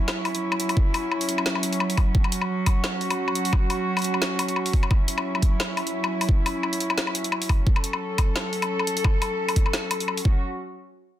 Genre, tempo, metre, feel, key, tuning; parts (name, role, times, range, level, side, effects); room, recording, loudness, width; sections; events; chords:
half-time drum and bass; 174 BPM; 4/4; swing 55% on 16ths, half-time; F# minor; A4 = 440 Hz
warm chamber cello section; sustained chords; 0.0-10.4 s; F#3 to A4; -27 LUFS; right 1 dB; vintage 12-bit sampler grit, sidechain pumping
drum and bass drum kit; drums; 0.1-10.2 s; hi-hat, snare drum, woodblock; -26 LUFS; left 2 dB; overdrive
electronic kick drum; drums; 0.8-10.3 s; -21 LUFS; equal; overdrive
light reverb; dense, heavily limited modern master; -21 LUFS; side -12 dB against mid
0.0-10.4 A section
0.0 F#m; 10.3 F#5; 10.4 N.C.